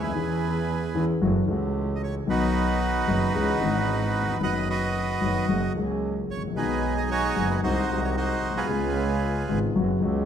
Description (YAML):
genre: tango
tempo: 112 BPM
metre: 4/4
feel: rubato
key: B major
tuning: A4 = 440 Hz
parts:
  - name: bandoneon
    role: melody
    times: 0.0-9.6 s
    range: D#4 to F#5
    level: -27 LUFS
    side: right 3 dB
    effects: none
  - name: dark concert grand piano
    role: accompaniment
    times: 0.0-10.3 s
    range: F#1 to G#4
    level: -26 LUFS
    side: left 4 dB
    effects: none
  - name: clear double bass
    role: bass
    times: 0.0-10.3 s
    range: F#1 to E2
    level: -29 LUFS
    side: right 2 dB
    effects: none
room: moderate scoring stage reverb, RT60 1.6 s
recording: minimal, uncompressed stereo recording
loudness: -23 LUFS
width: side -8 dB against mid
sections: 0.0-10.3 A section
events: none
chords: 0.2 C#m7/E; 1.2 F#m7; 2.3 B; 3.3 C#m; 4.4 B/F#; 5.5 F#; 6.6 B6; 7.6 G#7/B#; 8.7 C#7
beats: | 0.15 0.68 1.22 1.75 | 2.28 2.81 3.35 3.88 | 4.42 4.95 5.49 6.03 | 6.56 7.10 7.63 8.17 | 8.70 9.23 9.76